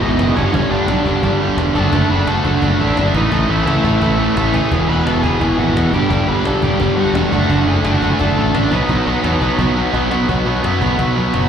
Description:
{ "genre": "punk rock", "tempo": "172 BPM", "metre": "4/4", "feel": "straight", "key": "unclear", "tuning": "A4 = 436 Hz", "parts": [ { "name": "biting lead guitar", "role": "melody", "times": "0.0-9.9 s", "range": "C#4 to B5", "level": "-23 LUFS", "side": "left 1 dB", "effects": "overdrive, slapback echo, ping-pong delay" }, { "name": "cranked stack guitar", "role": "riff", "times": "0.0-11.5 s", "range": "E2 to D4", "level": "-18 LUFS", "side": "right 9 dB", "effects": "overdrive, slapback echo" }, { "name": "crunchy overdriven guitar", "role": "riff", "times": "0.0-11.5 s", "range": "E2 to D4", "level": "-19 LUFS", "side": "left 10 dB", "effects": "none" }, { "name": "fuzz picked electric bass", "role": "bass", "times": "0.0-11.5 s", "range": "E1 to F#2", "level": "-19 LUFS", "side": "equal", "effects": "overdrive" }, { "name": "cajon", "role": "drums", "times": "0.2-11.4 s", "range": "none", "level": "-25 LUFS", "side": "equal", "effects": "none" } ], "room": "digital ambience", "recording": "live gig heard through the venue's PA, recital hall reverb", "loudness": "-13 LUFS", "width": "side -8 dB against mid", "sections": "0.0-10.3 A section; 10.3-11.5 B section", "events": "drum fill 9.9-10.3", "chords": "0.4 G5; 1.8 D/F#; 3.1 A5; 4.7 E; 5.9 G; 7.3 D/F#; 8.7 B; 10.3 B5", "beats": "0.19 | 0.54 0.88 1.23 1.58 | 1.93 2.28 2.62 2.97 | 3.32 3.67 4.02 4.36 | 4.71 5.06 5.41 5.76 | 6.11 6.45 6.80 7.15 | 7.50 7.85 8.20 8.54 | 8.89 9.24 9.59 9.94 | 10.29 10.64 10.99 11.34" }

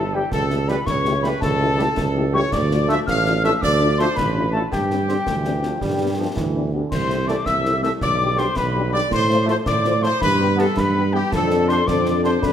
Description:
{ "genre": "military-style march for wind band", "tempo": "109 BPM (dotted quarters)", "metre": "6/8", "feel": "straight", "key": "unclear", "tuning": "A4 = 440 Hz", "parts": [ { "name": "warm trumpet section", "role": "melody", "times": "0.0-12.5 s", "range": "G4 to F5", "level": "-24 LUFS", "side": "equal", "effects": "none" }, { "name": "mellow wooden piccolo", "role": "second line", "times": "0.0-12.5 s", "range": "G5 to F6", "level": "-24 LUFS", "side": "left 3 dB", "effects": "none" }, { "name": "dark French horn section", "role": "accompaniment", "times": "0.0-12.5 s", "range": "G3 to C5", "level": "-26 LUFS", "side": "left 5 dB", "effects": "none" }, { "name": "mellow tuba", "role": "bass", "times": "0.0-12.5 s", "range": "G1 to A2", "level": "-22 LUFS", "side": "right 2 dB", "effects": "none" }, { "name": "clear trombone section", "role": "sustained chords", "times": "0.1-12.3 s", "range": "C3 to D4", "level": "-29 LUFS", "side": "right 3 dB", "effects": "none" }, { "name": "concert snare drum, concert bass drum and clash cymbals", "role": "drums", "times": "0.3-12.5 s", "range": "none", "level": "-29 LUFS", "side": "equal", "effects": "none" } ], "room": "moderate scoring stage reverb, RT60 1.7 s", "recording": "none", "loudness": "-17 LUFS", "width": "side -9 dB against mid", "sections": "0.0-12.5 A section", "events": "none", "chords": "0.3 A7/C#; 2.5 Dm; 4.7 Gsus4; 5.8 G; 6.9 Am/C; 8.0 G/B; 9.1 F/A; 10.2 Em/G; 11.3 Dm7/F", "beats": "| 0.32 0.87 | 1.42 1.97 | 2.52 3.07 | 3.62 4.17 | 4.72 5.27 | 5.82 6.37 | 6.92 7.46 | 8.01 8.56 | 9.11 9.66 | 10.21 10.76 | 11.31 11.86 | 12.41" }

